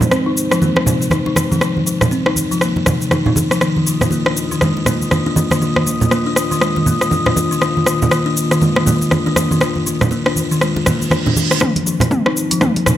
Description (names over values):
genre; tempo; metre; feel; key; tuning
afro house; 120 BPM; 4/4; swing 60% on 16ths; unclear; A4 = 440 Hz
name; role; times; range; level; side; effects
dark analog pad; sustained chords; 0.0-13.0 s; Eb3 to Eb6; -22 LUFS; left 1 dB; chorus, vintage 12-bit sampler grit, sidechain pumping
deep house drum kit; drums; 0.0-13.0 s; cabasa, hi-hat, rim click, toms; -18 LUFS; equal; overdrive
congas; percussion; 0.0-13.0 s; none; -18 LUFS; right 2 dB; none
buzzing kalimba; arpeggios; 0.1-12.9 s; C3 to Eb4; -19 LUFS; left 2 dB; sidechain pumping, low-pass filter, tape echo
reverse cymbal; sound effects; 10.8-11.6 s; none; -24 LUFS; right 6 dB; none
warm sub bass; bass; 11.6-13.0 s; none; barely audible; none; none
electronic kick drum; drums; 11.6-12.7 s; none; -24 LUFS; equal; overdrive, high-pass filter on kick
room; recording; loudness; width
light reverb, digital ambience; none; -13 LUFS; side -12 dB against mid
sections
0.0-11.6 A section; 11.6-13.0 B section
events
filter sweep on kalimba 0.0-11.6; reverse cymbal 10.8-11.6; build-up 11.6-13.0; drum fill 11.6-13.0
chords
0.0 Fm; 3.6 Ebsus2; 11.6 Fm